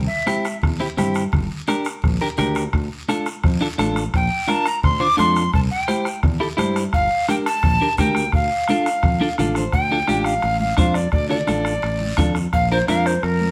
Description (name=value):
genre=latin, cumbia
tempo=171 BPM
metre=4/4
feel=straight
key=D minor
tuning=A4 = 440 Hz
part: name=fingered electric bass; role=bass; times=0.0-13.5 s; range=G1 to G2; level=-26 LUFS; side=equal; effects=none
part: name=alto recorder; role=melody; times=0.1-0.6, 4.2-13.5 s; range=Bb4 to D6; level=-23 LUFS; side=equal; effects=none
part: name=clean electric guitar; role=accompaniment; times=0.3-13.1 s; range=C4 to F5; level=-25 LUFS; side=equal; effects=none
part: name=bombo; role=percussion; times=0.3-13.4 s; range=none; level=-26 LUFS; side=equal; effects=none
part: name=congas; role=percussion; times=0.3-13.5 s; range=none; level=-30 LUFS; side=equal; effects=none
part: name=guiro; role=percussion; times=0.3-13.5 s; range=none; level=-39 LUFS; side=equal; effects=none
room=moderate studio reverb, RT60 0.8 s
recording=band playing live in one room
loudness=-20 LUFS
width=mono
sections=0.0-9.7 A section; 9.7-13.5 B section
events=clean electric guitar fill 9.2-9.7; recorder solo 9.7-13.5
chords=0.0 C; 1.3 Gm; 2.7 Dm; 4.1 Bbadd9; 5.5 C; 6.9 Gm; 8.3 Dm; 12.5 Bb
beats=0.28 0.63 0.98 | 1.33 1.68 2.03 2.38 | 2.73 3.08 3.43 3.78 | 4.13 4.48 4.83 5.18 | 5.54 5.88 6.24 6.59 | 6.94 7.29 7.64 7.99 | 8.34 8.69 9.04 9.39 | 9.74 10.09 10.44 10.79 | 11.14 11.49 11.84 12.19 | 12.54 12.88 13.23